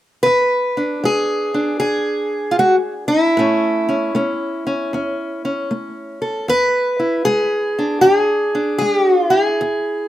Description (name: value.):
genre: acoustic country blues, solo or duo.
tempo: 77 BPM.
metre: 4/4.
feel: swing 64% on 8ths.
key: E mixolydian.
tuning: A4 = 442 Hz.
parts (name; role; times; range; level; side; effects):
fingerpicked steel-string acoustic guitar; solo; 0.2-10.1 s; E2 to B4; -15 LUFS; equal; none.
room: light reverb.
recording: recorded outdoors, with no room sound.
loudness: -15 LUFS.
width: side -13 dB against mid.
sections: 0.2-10.1 A section.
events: none.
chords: 0.2 E7; 3.4 A; 6.5 E7.